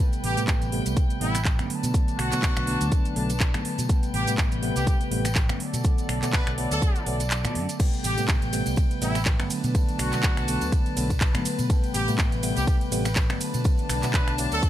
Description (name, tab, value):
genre	filtered disco house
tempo	123 BPM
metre	4/4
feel	swing 56% on 16ths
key	A dorian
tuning	A4 = 440 Hz
part	bell-like tine electric piano	accompaniment	0.0-14.7 s	C3 to B3	-30 LUFS	equal	phaser, vintage 12-bit sampler grit, sidechain pumping
part	dark chamber string section	sustained chords	0.0-14.7 s	B3 to A5	-33 LUFS	left 1 dB	sidechain pumping
part	tambourine	percussion	0.0-14.7 s	none	-42 LUFS	right 5 dB	sidechain pumping on perc
part	house drum kit	drums	0.1-14.7 s	crash cymbal, finger snaps, handclaps, hi-hat, ride cymbal, shaker	-30 LUFS	right 1 dB	sidechain pumping on hats, sidechain pumping on perc, sidechain pumping on cymbals
part	brilliant horn section	melody	0.2-14.7 s	E4 to B4	-31 LUFS	right 1 dB	sidechain pumping
part	fingered electric bass	bass	0.2-14.6 s	A1 to B2	-28 LUFS	equal	sidechain pumping
part	electronic kick drum	drums	0.5-14.7 s	none	-23 LUFS	equal	none
room	little or no reverb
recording	none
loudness	-22 LUFS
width	side -12 dB against mid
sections	0.0-7.8 A section; 7.8-14.7 A section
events	drop 0.0-7.8, 7.8-14.7; kick drops out 7.3-7.8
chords	0.0 Am9; 1.7 Bm7; 3.9 Am9; 5.6 Bm7; 7.8 Am9; 9.5 Bm7; 11.7 Am9; 13.4 Bm7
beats	0.48 0.97 1.46 | 1.94 2.43 2.92 3.41 | 3.90 4.38 4.87 5.36 | 5.85 6.33 6.82 7.31 | 7.80 8.29 8.77 9.26 | 9.75 10.24 10.72 11.21 | 11.70 12.19 12.68 13.16 | 13.65 14.14 14.63